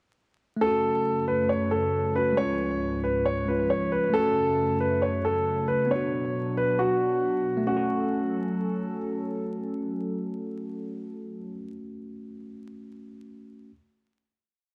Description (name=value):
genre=hip hop, trap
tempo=136 BPM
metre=4/4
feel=half-time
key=F# harmonic minor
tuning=A4 = 439 Hz
part: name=dark grand piano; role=melody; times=0.6-9.0 s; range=F#4 to C#5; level=-28 LUFS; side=equal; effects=delay
part: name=tine electric piano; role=accompaniment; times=0.6-13.7 s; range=G#3 to F#4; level=-34 LUFS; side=equal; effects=none
part: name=hollow soft pad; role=sustained chords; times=0.6-11.5 s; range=C#2 to A4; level=-35 LUFS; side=equal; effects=chorus
room=moderate lush hall reverb, RT60 2.9 s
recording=worn, warbling old tape, cassette tape, vinyl crackle, warbly pitch drift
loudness=-26 LUFS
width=mono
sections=0.6-7.7 breakdown; 7.7-11.2 final chord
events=none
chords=0.6 F#m; 2.4 C#; 4.1 F#m; 5.9 Bm; 7.7 F#m